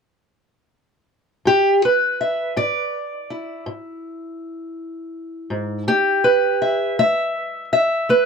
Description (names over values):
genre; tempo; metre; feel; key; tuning
acoustic country blues, solo or duo; 54 BPM (dotted quarters); 12/8; straight; E mixolydian; A4 = 440 Hz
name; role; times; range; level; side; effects
fingerpicked steel-string acoustic guitar; solo; 1.5-8.3 s; G#2 to E5; -18 LUFS; equal; none
room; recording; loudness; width
light reverb; close, detailed microphones; -17 LUFS; side -5 dB against mid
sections
1.5-8.3 A section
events
none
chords
1.5 E7; 5.9 N.C.